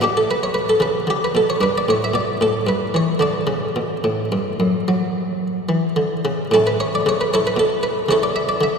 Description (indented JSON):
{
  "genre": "classical, baroque-style suite movement for harpsichord",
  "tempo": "75 BPM (dotted quarters)",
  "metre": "12/8",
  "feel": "rubato",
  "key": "D major",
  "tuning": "A4 = 435 Hz",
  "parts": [
    { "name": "buff-stop harpsichord", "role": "solo", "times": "0.0-8.8 s", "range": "F#2 to E5", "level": "-17 LUFS", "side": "equal", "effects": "none" }
  ],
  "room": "wet cathedral reverb, RT60 4.5 s",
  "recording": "recorded in a church or concert hall",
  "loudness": "-17 LUFS",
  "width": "side -6 dB against mid",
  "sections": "0.0-6.5 A section; 6.5-8.8 A section",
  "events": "none",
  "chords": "0.0 Bm9; 1.6 G; 2.4 A5; 3.2 D; 6.5 A",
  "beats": "| 0.03 0.81 1.60 2.40 | 3.22 4.05 4.88 5.70 | 6.51 7.30 8.09"
}